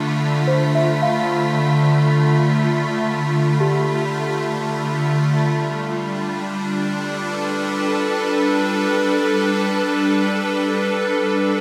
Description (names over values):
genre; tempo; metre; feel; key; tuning
ambient; free time; none; none; G mixolydian; A4 = 439 Hz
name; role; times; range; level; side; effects
evolving wavetable pad; sustained chords; 0.0-11.6 s; D3 to B4; -20 LUFS; equal; ensemble chorus, built-in reverb
small celesta; arpeggios; 0.0-11.6 s; G4 to F5; -27 LUFS; equal; analog delay
wind-like tuned noise texture; texture; 0.0-11.6 s; B5; -33 LUFS; equal; built-in reverb
room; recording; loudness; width
wet plate reverb, RT60 2.4 s; echo-heavy mix; -19 LUFS; mono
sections
0.0-11.6 A section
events
fade-out on synth texture 0.0-11.6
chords
0.0 Dm11; 5.4 G9